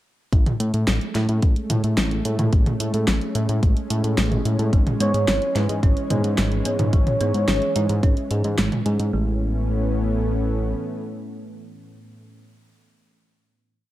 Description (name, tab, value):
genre	synthwave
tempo	109 BPM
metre	4/4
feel	straight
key	A major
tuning	A4 = 440 Hz
part	lush unison pad	sustained chords	1.0-12.1 s	A2 to C#4	-28 LUFS	equal	chorus, sidechain pumping
part	fat analog bass	bass	0.3-10.7 s	G#1 to A2	-22 LUFS	equal	sidechain pumping
part	electronic kick drum	drums	0.3-8.1 s	none	-18 LUFS	equal	none
part	pop drum kit	drums	0.3-9.1 s	hi-hat, snare drum, toms	-25 LUFS	equal	none
part	thumb-piano-like synth pluck	arpeggios	4.7-9.4 s	G#3 to G#4	-31 LUFS	right 4 dB	chorus, digital delay
part	warm velvety synth lead	melody	5.0-12.1 s	A4 to C#5	-28 LUFS	right 1 dB	chorus, digital delay
room	light reverb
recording	dark, warm production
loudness	-19 LUFS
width	side -15 dB against mid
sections	0.3-9.1 verse; 9.1-11.3 final chord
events	none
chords	0.3 Amaj7; 4.7 E6/G#; 9.1 A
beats	| 0.33 0.88 1.43 1.98 | 2.53 3.08 3.63 4.18 | 4.73 5.28 5.83 6.38 | 6.93 7.48 8.03 8.58 | 9.13 9.68 10.23 10.79